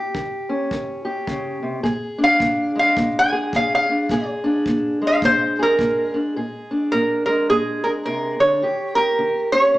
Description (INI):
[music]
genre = acoustic country blues, solo or duo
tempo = 106 BPM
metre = 4/4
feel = swing 61% on 8ths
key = Bb mixolydian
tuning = A4 = 440 Hz
[part]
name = fingerpicked steel-string acoustic guitar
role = accompaniment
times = 0.0-9.8 s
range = Bb2 to Ab4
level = -22 LUFS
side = equal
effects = none
[part]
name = kick drum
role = drums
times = 0.1-6.0 s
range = none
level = -33 LUFS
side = equal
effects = none
[part]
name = lap resonator guitar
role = melody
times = 2.2-9.8 s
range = Ab4 to Ab5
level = -17 LUFS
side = equal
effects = plate reverb
[sound]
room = wet small room reverb, RT60 0.6 s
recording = heard from further back in the room, small speaker sound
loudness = -18 LUFS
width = side -17 dB against mid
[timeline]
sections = 0.0-6.4 A section; 6.4-9.8 B section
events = resonator guitar played with a steel bar solo 0.0-6.4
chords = 0.0 Eb7; 1.8 Bb7; 8.6 Eb7